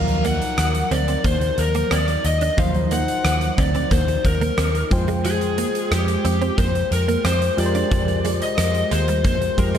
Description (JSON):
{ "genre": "1980s-style pop", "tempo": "90 BPM", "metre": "4/4", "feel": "straight", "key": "unclear", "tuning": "A4 = 441 Hz", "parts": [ { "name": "lead guitar through a small cranked amp", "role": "melody", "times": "0.0-9.8 s", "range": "G4 to Gb5", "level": "-23 LUFS", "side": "left 2 dB", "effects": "overdrive, tape echo" }, { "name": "warm analog keys", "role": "accompaniment", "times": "0.0-9.8 s", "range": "F3 to G5", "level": "-26 LUFS", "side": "equal", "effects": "chorus" }, { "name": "vintage muted picked electric bass", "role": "bass", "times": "0.0-9.8 s", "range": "D2 to F2", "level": "-22 LUFS", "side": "equal", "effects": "none" }, { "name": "direct-recorded clean electric guitar", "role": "riff", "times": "0.1-9.8 s", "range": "F3 to Eb4", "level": "-29 LUFS", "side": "right 6 dB", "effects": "ensemble chorus, tape echo" }, { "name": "big rock drum kit", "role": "drums", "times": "0.1-9.8 s", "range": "hi-hat, kick drum, rim click", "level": "-24 LUFS", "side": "equal", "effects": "none" } ], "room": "light reverb, studio reverb", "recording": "dark, warm production", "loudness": "-18 LUFS", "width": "side -9 dB against mid", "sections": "0.0-9.8 A section", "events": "none", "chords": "0.0 Ebmadd9; 4.9 Fmadd9" }